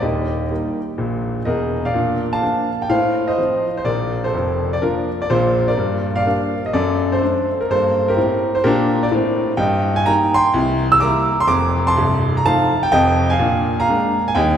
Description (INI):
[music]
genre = jazz, stride piano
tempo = 125 BPM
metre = 4/4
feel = swing 63% on 8ths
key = Bb major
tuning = A4 = 440 Hz
[part]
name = clear concert grand piano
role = solo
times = 0.0-14.6 s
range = C1 to E6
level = -16 LUFS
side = equal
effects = none
[sound]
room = wet church reverb, RT60 3.1 s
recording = recorded in a church or concert hall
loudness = -16 LUFS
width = side -8 dB against mid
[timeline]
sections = 0.0-1.9 A section; 1.9-14.6 B section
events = none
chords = 0.0 Eb; 1.9 Bb; 2.9 F7/A; 3.9 Bb; 5.8 Gm; 6.7 D7/F#; 7.7 Gm; 9.6 Eb/G; 10.6 C7; 11.5 F7; 13.4 Bb7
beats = | 0.02 0.50 0.98 1.46 | 1.94 2.42 2.90 3.38 | 3.86 4.34 4.82 5.29 | 5.77 6.25 6.73 7.21 | 7.69 8.17 8.65 9.12 | 9.60 10.08 10.56 11.04 | 11.52 11.99 12.47 12.95 | 13.43 13.90 14.38